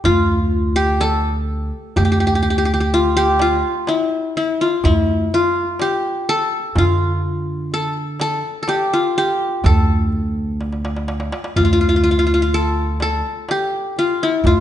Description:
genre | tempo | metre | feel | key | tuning
Turkish makam ensemble | 125 BPM (eighths) | 10/8 | straight | D makam huseyni | A4 = 440 Hz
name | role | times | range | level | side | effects
qanun | melody | 0.0-14.6 s | E4-30c to A4 | -18 LUFS | left 2 dB | none
darbuka | percussion | 0.0-14.6 s | none | -22 LUFS | right 1 dB | none
upright bass | bass | 0.1-14.6 s | D2 to D3 | -19 LUFS | right 1 dB | none
room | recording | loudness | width
moderate recital hall reverb, RT60 1.6 s | nothing above 10.4 kHz | -16 LUFS | side -11 dB against mid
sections
0.0-14.6 A section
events
drum fill 10.6-11.6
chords
none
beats
0.05 0.53 1.01 1.49 | 1.97 2.44 2.92 3.40 3.88 4.36 4.84 5.32 5.80 6.28 | 6.76 7.24 7.72 8.20 8.68 9.16 9.64 10.12 10.60 11.08 | 11.56 12.04 12.52 13.00 13.48 13.96 14.44

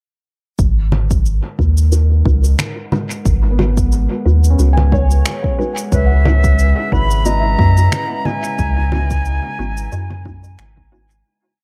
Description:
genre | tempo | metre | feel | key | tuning
ambient dub | 90 BPM | 4/4 | swing 56% on 16ths | G# minor | A4 = 437 Hz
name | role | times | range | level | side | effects
warbly tape-like pad | sustained chords | 1.4-11.3 s | C#3 to F#5 | -31 LUFS | equal | chorus, built-in reverb, vintage 12-bit sampler grit
soft dub sub bass | bass | 0.6-11.2 s | G#1 to F#2 | -16 LUFS | equal | none
electronic cabasa, congas and finger snaps | drums | 0.6-11.2 s | none | -25 LUFS | equal | dub echo
electronic kick drum | drums | 0.6-10.9 s | none | -20 LUFS | equal | none
filtered dub chord stab | stabs | 0.9-11.1 s | G#3 to B4 | -27 LUFS | equal | phaser, subtle chorus, dub echo
felt-muted upright piano | arpeggios | 3.5-11.3 s | B3 to G#5 | -27 LUFS | equal | dub echo
breathy bright concert flute | melody | 5.9-10.9 s | E5 to B5 | -23 LUFS | equal | dub echo
room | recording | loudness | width
little or no reverb | echo-heavy mix | -15 LUFS | mono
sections
0.6-11.3 groove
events
fade-in on ambient pad 0.6-11.3; filter sweep on synth stab 0.6-11.3; fade-out 7.7-11.3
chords
0.6 G#m7; 5.9 C#m11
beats
| 0.59 1.25 1.92 2.59 | 3.25 3.92 4.59 5.25 | 5.92 6.59 7.25 7.92 | 8.59 9.26 9.92 10.59

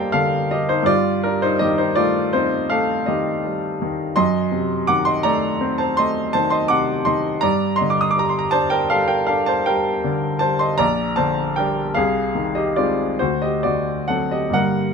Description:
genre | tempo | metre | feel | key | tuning
classical, romantic nocturne for solo piano | 43-57 BPM (dotted quarters) | 9/8 | rubato | G minor | A4 = 440 Hz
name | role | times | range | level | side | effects
clear grand piano | solo | 0.0-14.9 s | Bb1 to Eb6 | -17 LUFS | equal | none
room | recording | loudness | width
little or no reverb | close, detailed microphones | -17 LUFS | side -5 dB against mid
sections
0.0-14.9 A section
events
none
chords
0.0 Gm; 4.2 F#dim7; 7.4 Gm; 10.8 Gm/Bb; 12.0 Ab/C; 13.2 D7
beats
| 0.88 1.97 3.07 | 4.17 5.25 6.34 | 7.43 8.54 9.67 | 10.80 11.96 13.20 | 14.54

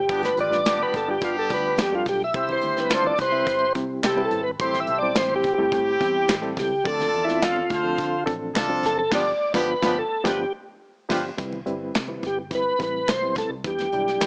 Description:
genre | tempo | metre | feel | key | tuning
uptempo 1960s-style soul | 106 BPM | 4/4 | straight | C major | A4 = 442 Hz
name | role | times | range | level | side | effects
tonewheel organ | melody | 0.0-14.3 s | E4 to E5 | -25 LUFS | equal | chorus vibrato, slow rotary speaker
vintage muted picked electric bass | bass | 0.0-14.3 s | F#1 to E3 | -39 LUFS | equal | none
warm horn section | second line | 0.1-11.2 s | B3 to D5 | -31 LUFS | equal | none
barky reed electric piano | accompaniment | 0.1-14.2 s | F3 to E5 | -32 LUFS | equal | overdrive, fast tremolo
vintage brush drum kit | drums | 0.1-14.3 s | crash cymbal, hi-hat, kick drum, snare drum | -30 LUFS | equal | none
congas | percussion | 0.2-14.3 s | none | -47 LUFS | equal | none
finger snap | percussion | 0.7-14.3 s | none | -36 LUFS | equal | none
room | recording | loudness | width
light reverb, studio reverb | small speaker sound | -24 LUFS | mono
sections
0.0-11.4 A section; 11.4-14.3 B section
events
tonewheel organ solo 0.0-11.4; band accent 9.1-11.4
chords
0.1 G7; 2.3 Cmaj7; 4.6 Am7; 6.9 Dm7; 9.1 G7; 11.4 Cmaj7; 13.6 Em7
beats
| 0.09 0.66 1.22 1.78 | 2.35 2.91 3.47 4.04 | 4.60 5.17 5.73 6.29 | 6.86 7.42 7.99 8.55 | 9.12 9.68 10.25 10.81 | 11.38 11.95 12.51 13.08 | 13.65 14.21

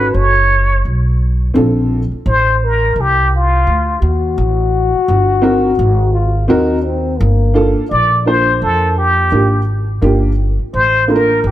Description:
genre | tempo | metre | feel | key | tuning
hip hop, jazz-hop | 85 BPM | 4/4 | swing 59% on 16ths | G minor | A4 = 440 Hz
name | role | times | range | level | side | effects
trumpet with plunger mute | melody | 0.0-11.5 s | F4 to D5 | -14 LUFS | equal | none
dark upright piano | accompaniment | 0.0-11.5 s | Bb3 to C5 | -16 LUFS | right 1 dB | none
upright bass | bass | 0.0-11.5 s | F#1 to F2 | -15 LUFS | equal | none
breathy trombone | second line | 4.0-7.8 s | Bb3 to F#4 | -17 LUFS | left 5 dB | none
room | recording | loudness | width
light reverb, studio reverb | none | -11 LUFS | side -13 dB against mid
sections
0.0-11.5 A section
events
none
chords
0.0 B9; 1.6 Bbmaj7; 4.4 Am7; 5.8 Ab9; 7.2 Gm7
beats
0.14 0.85 | 1.55 2.26 2.96 3.67 | 4.38 5.08 5.79 6.50 | 7.20 7.91 8.61 9.32 | 10.02 10.73 11.44

